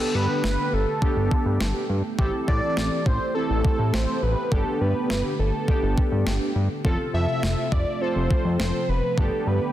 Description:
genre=synth-pop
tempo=103 BPM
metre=4/4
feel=straight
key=G mixolydian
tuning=A4 = 439 Hz
part: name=fat analog lead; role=melody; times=0.0-9.7 s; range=G4 to E5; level=-27 LUFS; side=equal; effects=digital delay
part: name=analog synth brass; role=accompaniment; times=0.0-9.7 s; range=B3 to A4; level=-29 LUFS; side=right 1 dB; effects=chorus
part: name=warm analog pad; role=sustained chords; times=0.0-9.7 s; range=C3 to G4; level=-31 LUFS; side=equal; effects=chorus
part: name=fat analog bass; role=bass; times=0.1-9.6 s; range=F1 to A2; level=-24 LUFS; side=equal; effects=none
part: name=clean 12-bit digital drum machine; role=drums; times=0.4-9.3 s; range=kick drum, snare drum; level=-26 LUFS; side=equal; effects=overdrive
room=moderate concert hall reverb, RT60 2.1 s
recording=dense, heavily limited modern master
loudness=-21 LUFS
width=side -13 dB against mid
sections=0.0-9.7 A section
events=none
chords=0.0 Gadd9; 2.2 Am7; 4.5 Gadd9; 6.8 F; 9.2 Gadd9

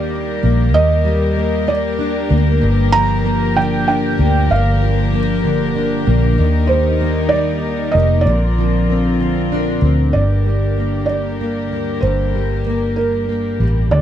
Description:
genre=six-eight pop ballad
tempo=64 BPM (dotted quarters)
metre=6/8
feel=straight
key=unclear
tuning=A4 = 440 Hz
part: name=felt-muted upright piano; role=melody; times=0.0-14.0 s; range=Bb4 to Bb5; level=-20 LUFS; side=right 4 dB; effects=none
part: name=fingerpicked plugged-in steel-string acoustic guitar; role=accompaniment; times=0.0-14.0 s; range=G2 to D4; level=-20 LUFS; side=left 1 dB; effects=double-tracked left and right
part: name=warm symphonic string section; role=sustained chords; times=0.0-14.0 s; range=D3 to Bb4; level=-23 LUFS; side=left 4 dB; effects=none
part: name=vintage muted fingered electric bass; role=bass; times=0.0-14.0 s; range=F1 to Eb2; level=-17 LUFS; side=equal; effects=none
room=little or no reverb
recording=dry, close 1970s-style studio recording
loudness=-14 LUFS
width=side -10 dB against mid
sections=0.0-10.1 A section; 10.1-14.0 B section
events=none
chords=0.0 Ebmaj7; 2.6 Gm7; 6.4 Ebmaj7; 8.3 Bbadd9; 10.1 Gm

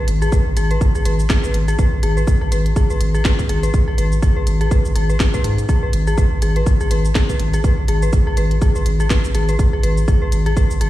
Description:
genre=minimal techno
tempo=123 BPM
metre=4/4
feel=swing 57% on 16ths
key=G# minor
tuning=A4 = 437 Hz
part: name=dark detuned synth bell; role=riff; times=0.0-10.8 s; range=G#4 to B4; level=-24 LUFS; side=left 1 dB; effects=chorus, sidechain pumping, digital delay
part: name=saturated sub bass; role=bass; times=0.1-10.9 s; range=G#1 to G#2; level=-16 LUFS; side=equal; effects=sidechain pumping
part: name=house drum kit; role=drums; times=0.1-10.9 s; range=hi-hat, shaker, snare drum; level=-27 LUFS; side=equal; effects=studio reverb
part: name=electronic kick drum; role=drums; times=0.3-10.7 s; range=none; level=-16 LUFS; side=equal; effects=studio reverb
room=little or no reverb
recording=played on a big sound system in a bare room, large studio reverb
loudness=-14 LUFS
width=side -15 dB against mid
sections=0.0-10.9 A section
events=none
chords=0.0 G#m

